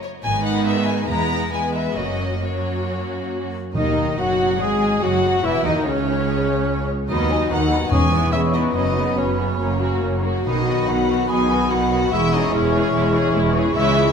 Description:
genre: quick classical-period movement for symphony orchestra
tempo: 133-150 BPM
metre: 4/4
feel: rubato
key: unclear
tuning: A4 = 438 Hz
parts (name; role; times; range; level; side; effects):
- warm chamber violin section; melody; 0.0-14.1 s; C#5 to A#5; -27 LUFS; left 4 dB; none
- warm symphonic violin section; second line; 0.2-14.1 s; A#3 to B4; -27 LUFS; left 4 dB; none
- warm symphonic viola section; accompaniment; 0.3-14.1 s; C#3 to B3; -26 LUFS; right 2 dB; none
- rich symphonic cello section; bass; 0.3-14.1 s; C#2 to B2; -25 LUFS; right 2 dB; none
- warm symphonic double bass section; bass; 0.3-14.1 s; E1 to D#2; -26 LUFS; right 4 dB; none
- mellow clarinet; second line; 3.7-14.1 s; B3 to G#4; -28 LUFS; left 1 dB; none
- mellow cor anglais; second line; 3.7-14.1 s; C#4 to G#4; -28 LUFS; right 2 dB; none
- mellow French horn section; sustained chords; 3.7-14.1 s; C#3 to F#4; -25 LUFS; left 4 dB; none
- timpani; percussion; 3.7-4.4, 7.9-11.1 s; E2 to B2; -26 LUFS; equal; none
- small flute group; second line; 3.8-14.1 s; C#5 to C#6; -29 LUFS; left 1 dB; none
room: wet scoring stage reverb, RT60 1.8 s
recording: none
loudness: -17 LUFS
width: side -6 dB against mid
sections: 0.0-3.8 A section; 3.8-14.1 B section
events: none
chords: 0.3 G#m; 1.1 E; 2.0 F#; 3.8 D#madd11/F#; 5.4 C#m; 7.1 B/D#; 7.9 C#m7/E; 8.8 F#sus4; 9.6 F#; 10.5 B; 12.1 C#m/E

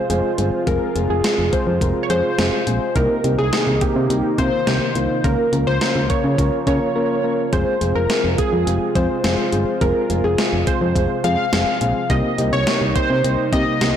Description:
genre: synth-pop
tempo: 105 BPM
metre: 4/4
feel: straight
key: F minor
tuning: A4 = 440 Hz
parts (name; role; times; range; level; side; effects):
- funky polysynth comp; melody; 0.0-14.0 s; G4 to F5; -21 LUFS; equal; chorus
- soft electric-piano-like synth keys; accompaniment; 0.0-14.0 s; Ab3 to Bb4; -23 LUFS; left 3 dB; chorus
- phased analog pad; sustained chords; 0.0-14.0 s; C3 to F4; -27 LUFS; right 2 dB; phaser, chorus
- solid FM bass; bass; 0.1-13.9 s; F1 to Db3; -21 LUFS; right 1 dB; none
- gated 80s digital drum machine; drums; 0.1-13.9 s; hi-hat, kick drum, snare drum; -23 LUFS; equal; gated reverb, gated reverb snare
room: moderate lush hall reverb, RT60 2.1 s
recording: blown-out, overdriven recording, overdrive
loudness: -16 LUFS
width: side -9 dB against mid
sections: 0.0-14.0 A section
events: silent gap 7.0-7.5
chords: 0.0 Fm; 3.0 Cm7; 5.2 Bbm/Db; 7.5 Fm; 12.1 Cm7

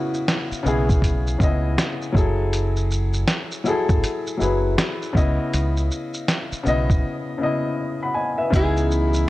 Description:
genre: lo-fi hip hop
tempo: 80 BPM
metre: 4/4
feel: swing 62% on 16ths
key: C# minor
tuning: A4 = 440 Hz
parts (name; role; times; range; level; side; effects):
- nylon-string guitar; melody; 0.0-0.2, 8.6-9.3 s; E4 to G#4; -28 LUFS; right 2 dB; analog delay
- warm upright piano; accompaniment; 0.0-9.3 s; C#3 to B5; -23 LUFS; left 2 dB; cassette tape
- lo-fi sampler-style drum kit; drums; 0.1-9.3 s; hi-hat, kick drum, shaker, snare drum; -22 LUFS; equal; none
- deep dub fingered electric bass; bass; 0.5-9.2 s; F#1 to C#2; -22 LUFS; equal; none
- dark analog pad; sustained chords; 8.5-9.3 s; E3 to C#4; -32 LUFS; right 3 dB; chorus
room: light reverb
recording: cassette tape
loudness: -19 LUFS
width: side -17 dB against mid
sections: 0.0-8.5 A section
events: break 7.0-8.5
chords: 0.0 C#m9; 2.2 F#m9; 5.2 C#m9

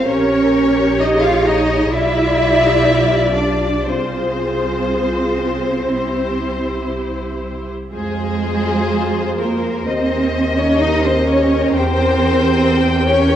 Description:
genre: classical, slow romantic movement for string orchestra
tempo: 57-67 BPM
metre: 4/4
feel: rubato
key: F minor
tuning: A4 = 440 Hz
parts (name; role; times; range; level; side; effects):
- rich studio violin section; melody; 0.0-13.4 s; C5 to G5; -23 LUFS; left 5 dB; none
- rich studio violin section; second line; 0.0-13.4 s; Ab4 to F5; -21 LUFS; left 2 dB; none
- warm studio viola section; accompaniment; 0.0-13.4 s; E4 to Bb4; -22 LUFS; right 1 dB; none
- dark studio cello section; bass; 0.0-13.4 s; Ab3 to F4; -18 LUFS; right 2 dB; none
- warm studio double bass section; bass; 0.0-13.4 s; Bb1 to F2; -22 LUFS; right 2 dB; none
room: wet scoring stage reverb, RT60 1.7 s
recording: worn, warbling old tape, cassette tape, warbly pitch drift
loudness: -14 LUFS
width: side -10 dB against mid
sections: 0.0-13.4 A section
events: none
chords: 0.1 Gdim/Bb; 1.9 G7/B; 3.9 Fm/C; 5.9 C; 7.9 Fm; 9.9 Eb; 11.7 C7/E

